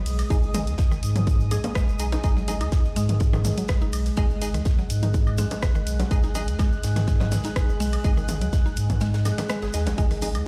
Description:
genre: minimal techno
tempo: 124 BPM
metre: 4/4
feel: straight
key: unclear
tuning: A4 = 440 Hz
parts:
  - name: saturated sub bass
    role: bass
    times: 0.0-10.4 s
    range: G#1 to G#2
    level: -28 LUFS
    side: equal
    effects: sidechain pumping
  - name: deep dark ambient pad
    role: texture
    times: 0.0-10.5 s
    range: G#3 to F#6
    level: -36 LUFS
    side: equal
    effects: chorus, built-in reverb, sidechain pumping
  - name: house drum kit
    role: drums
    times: 0.1-10.4 s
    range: hi-hat, rim click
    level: -38 LUFS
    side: equal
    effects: none
  - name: tight funk drum kit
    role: drums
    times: 0.1-10.3 s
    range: hi-hat, ride cymbal, snare drum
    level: -45 LUFS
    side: equal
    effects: sidechain pumping on cymbals, high-pass filter on cymbals, sidechain pumping on hats, high-pass filter on hats, high-pass filter on snare, high-pass filter on room
  - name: tube shaker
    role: percussion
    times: 0.1-10.4 s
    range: none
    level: -43 LUFS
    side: equal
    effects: none
  - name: electronic woodblock, toms and bongos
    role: percussion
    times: 0.2-10.4 s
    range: none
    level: -35 LUFS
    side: equal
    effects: tape echo
  - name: mallet-like synth pluck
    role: riff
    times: 0.3-10.2 s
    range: D#3 to G#4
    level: -35 LUFS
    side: equal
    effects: chorus, sidechain pumping, tape echo
  - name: wavetable chord stab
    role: stabs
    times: 0.3-10.3 s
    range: G#3 to G#4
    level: -37 LUFS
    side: equal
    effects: tape echo
  - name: electronic kick drum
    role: drums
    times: 0.3-10.1 s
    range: none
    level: -25 LUFS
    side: equal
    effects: none
room: small room ambience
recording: played on a big sound system in a bare room, stone room reverb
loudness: -23 LUFS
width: mono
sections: 0.0-10.5 A section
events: kick drops out 9.0-10.0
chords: 0.0 G#5

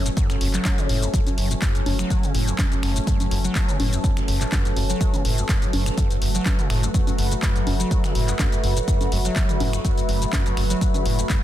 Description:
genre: acid house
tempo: 124 BPM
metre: 4/4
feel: swing 54% on 16ths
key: F# minor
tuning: A4 = 436 Hz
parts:
  - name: lush unison pad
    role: sustained chords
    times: 0.0-11.4 s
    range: F#3 to F#4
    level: -29 LUFS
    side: equal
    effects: chorus, phaser, vintage 12-bit sampler grit, sidechain pumping
  - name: overdriven acid bass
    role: riff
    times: 0.0-11.4 s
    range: E2 to F#3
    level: -27 LUFS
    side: equal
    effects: tube saturation, wide subtle chorus, sidechain pumping, ping-pong delay
  - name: round analog bass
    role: bass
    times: 0.0-11.2 s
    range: F#1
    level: -24 LUFS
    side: equal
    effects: sidechain pumping
  - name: warbly tape-like pad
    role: texture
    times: 0.0-11.4 s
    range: B4 to B5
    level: -32 LUFS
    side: right 1 dB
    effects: chorus, built-in reverb, sidechain pumping
  - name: punchy analog drum machine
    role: drums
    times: 0.1-11.4 s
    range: congas, finger snaps, handclaps, hi-hat, shaker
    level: -28 LUFS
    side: left 1 dB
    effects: soft clipping on snare
  - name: electronic kick drum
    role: drums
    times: 0.2-11.4 s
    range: none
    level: -22 LUFS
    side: equal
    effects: none
room: little or no reverb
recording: dense, heavily limited modern master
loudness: -19 LUFS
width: side -12 dB against mid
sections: 0.0-11.4 A section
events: none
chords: 0.0 F#m

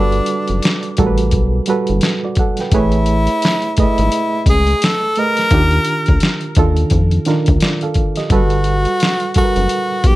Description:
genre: R&B, neo-soul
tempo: 86 BPM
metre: 4/4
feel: swing 59% on 16ths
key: unclear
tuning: A4 = 438 Hz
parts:
  - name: bright tenor saxophone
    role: melody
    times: 0.0-10.2 s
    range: D4 to Bb4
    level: -18 LUFS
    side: equal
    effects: none
  - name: reed electric piano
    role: accompaniment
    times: 0.0-10.2 s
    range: Eb3 to G5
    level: -18 LUFS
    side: right 3 dB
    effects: fast tremolo
  - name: rubbery square bass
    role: bass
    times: 0.0-10.2 s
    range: F#1 to F2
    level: -16 LUFS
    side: equal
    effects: none
  - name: boom bap sampler-style drum kit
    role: drums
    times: 0.1-10.2 s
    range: hi-hat, kick drum, snare drum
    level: -16 LUFS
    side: left 1 dB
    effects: none
room: light reverb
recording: dark, warm production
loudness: -13 LUFS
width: side -17 dB against mid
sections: 0.0-10.2 A section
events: none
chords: 0.0 Gmaj9; 2.7 Amaj9; 5.5 Ebmaj9; 8.3 Gmaj9

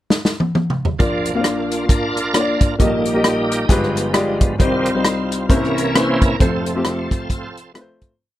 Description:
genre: uptempo gospel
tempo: 133 BPM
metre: 4/4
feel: swing 59% on 8ths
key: Bb major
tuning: A4 = 439 Hz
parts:
  - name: warm soul drum kit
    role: drums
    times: 0.1-8.1 s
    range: hi-hat, kick drum, rim click, snare drum, toms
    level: -17 LUFS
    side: equal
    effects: none
  - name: clear concert grand piano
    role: accompaniment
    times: 1.0-8.2 s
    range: F1 to F5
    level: -20 LUFS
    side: left 2 dB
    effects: none
  - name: bright tonewheel organ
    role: sustained chords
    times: 1.0-7.7 s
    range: F2 to C5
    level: -22 LUFS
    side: right 2 dB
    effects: slow rotary speaker, chorus vibrato
room: little or no reverb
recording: none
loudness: -15 LUFS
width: side -14 dB against mid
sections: 0.0-1.0 pickup bar; 1.0-8.2 verse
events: drum fill 0.1-1.0; tonewheel organ solo 1.0-8.2; fade-out 6.4-8.2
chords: 0.0 N.C.; 1.0 Bb; 2.8 Eb/Bb; 3.7 G7b9; 4.6 Cm; 5.5 C7b9; 6.4 F

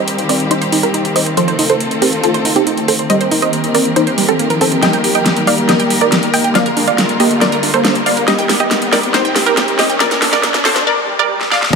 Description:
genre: uplifting trance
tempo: 139 BPM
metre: 4/4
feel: straight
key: unclear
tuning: A4 = 445 Hz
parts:
  - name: wide unison pluck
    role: melody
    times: 0.0-11.8 s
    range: C4 to G5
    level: -16 LUFS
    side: moving between left 3 dB and right 5 dB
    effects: auto-pan, sidechain pumping, ping-pong delay
  - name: rich studio string section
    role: sustained chords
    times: 0.0-11.8 s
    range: D3 to Bb4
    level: -18 LUFS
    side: left 1 dB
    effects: sidechain pumping
  - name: riser, swell and sub drop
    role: sound effects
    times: 0.3-11.8 s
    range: none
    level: -23 LUFS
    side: equal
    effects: none
  - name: big-room dance drum kit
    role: drums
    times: 0.1-11.8 s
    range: crash cymbal, hi-hat, snare drum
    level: -17 LUFS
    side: equal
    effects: overdrive
  - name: wide unison pluck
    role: arpeggios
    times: 0.3-11.8 s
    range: F3 to G5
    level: -20 LUFS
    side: right 4 dB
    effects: sidechain pumping, ping-pong delay
room: moderate huge ambient reverb, RT60 4.4 s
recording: high-pass filter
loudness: -11 LUFS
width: side -5 dB against mid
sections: 0.0-11.7 A section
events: build-up 0.0-11.7; filter sweep on synth pluck 0.0-11.7; filter sweep on synth arpeggio sound 0.0-11.7; riser 0.3-10.9; drum fill 4.8-10.9, 11.4-11.7; swell 10.9-11.7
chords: 0.0 Cm7; 1.4 F7; 3.1 Cm7; 4.8 Eb; 6.6 Gm7/D; 8.3 Eb; 10.0 Bbmaj7

